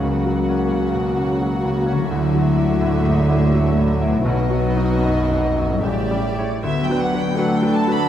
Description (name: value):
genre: cinematic, emotional film score for orchestra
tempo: 72-88 BPM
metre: 3/4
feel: rubato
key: unclear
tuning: A4 = 440 Hz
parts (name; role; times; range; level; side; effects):
- warm chamber violin section; melody; 0.0-8.1 s; D5 to B5; -29 LUFS; equal; none
- warm symphonic violin section; second line; 0.0-8.1 s; F#4 to A4; -31 LUFS; equal; none
- bright grand piano; accompaniment; 0.0-8.1 s; A1 to C#5; -26 LUFS; left 1 dB; none
- dark symphonic viola section; accompaniment; 0.0-8.1 s; C#3 to A4; -26 LUFS; equal; none
- warm French horn section; sustained chords; 0.0-6.3 s; C#3 to F#4; -24 LUFS; left 2 dB; none
- concert harp; arpeggios; 0.0-8.1 s; A2 to C#6; -25 LUFS; left 8 dB; none
- warm chamber double bass section; bass; 0.0-6.4 s; A1 to D2; -23 LUFS; right 2 dB; none
- warm symphonic cello section; bass; 0.0-8.1 s; A2 to D3; -23 LUFS; right 3 dB; none
room: moderate scoring stage reverb, RT60 1.7 s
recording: none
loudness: -16 LUFS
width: side -10 dB against mid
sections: 0.0-6.6 A section; 6.6-8.1 B section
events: none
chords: 0.0 F#/C#; 2.1 Dadd9; 4.3 B; 5.8 A7; 6.6 D6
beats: | 0.02 0.72 1.41 | 2.11 2.82 3.54 | 4.27 5.02 5.83 | 6.63 7.38